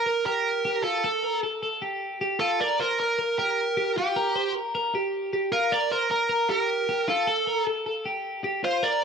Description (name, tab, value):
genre	indie pop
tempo	154 BPM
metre	4/4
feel	straight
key	Bb major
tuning	A4 = 440 Hz
part	high-gain lead guitar	melody	0.0-9.0 s	G4 to D5	-26 LUFS	right 3 dB	distortion, slapback echo
part	twelve-string electric guitar	arpeggios	0.0-9.0 s	F4 to C5	-27 LUFS	left 2 dB	none
room	light reverb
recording	none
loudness	-23 LUFS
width	side -6 dB against mid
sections	0.0-9.0 A section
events	none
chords	0.0 Bb5; 1.0 F; 2.6 Gmadd11; 4.0 Bb5; 7.3 F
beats	0.26 0.65 | 1.04 1.43 1.82 2.21 | 2.60 2.99 3.38 3.77 | 4.16 4.55 4.94 5.33 | 5.72 6.11 6.50 6.89 | 7.28 7.67 8.06 8.45 | 8.84